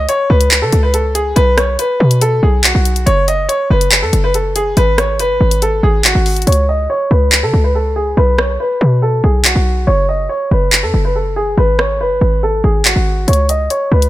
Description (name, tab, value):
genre	hip hop, drill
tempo	141 BPM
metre	4/4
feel	half-time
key	unclear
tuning	A4 = 441 Hz
part	bright upright piano	melody	0.0-14.1 s	F#4 to D#5	-15 LUFS	equal	low-pass filter
part	short 808-style bass	bass	0.0-14.1 s	F#1 to C#3	-13 LUFS	equal	none
part	drill drum kit	drums	0.1-14.1 s	handclaps, hi-hat, rim click	-14 LUFS	equal	none
room	digital ambience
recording	none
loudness	-11 LUFS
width	side -15 dB against mid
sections	0.0-6.5 A section; 6.5-14.1 B section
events	hi-hats muted 6.5-13.3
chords	0.0 B7sus2/C#; 1.4 B5; 3.1 F#madd11; 4.8 G#m7; 6.5 B7sus2/C#; 8.2 B5; 9.9 F#madd11; 11.6 G#m7; 13.3 Badd9/C#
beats	0.09 0.51 0.94 | 1.36 1.79 2.21 2.64 | 3.07 3.49 3.92 4.34 | 4.77 5.19 5.62 6.04 | 6.47 6.90 7.32 7.75 | 8.17 8.60 9.02 9.45 | 9.87 10.30 10.73 11.15 | 11.58 12.00 12.43 12.85 | 13.28 13.70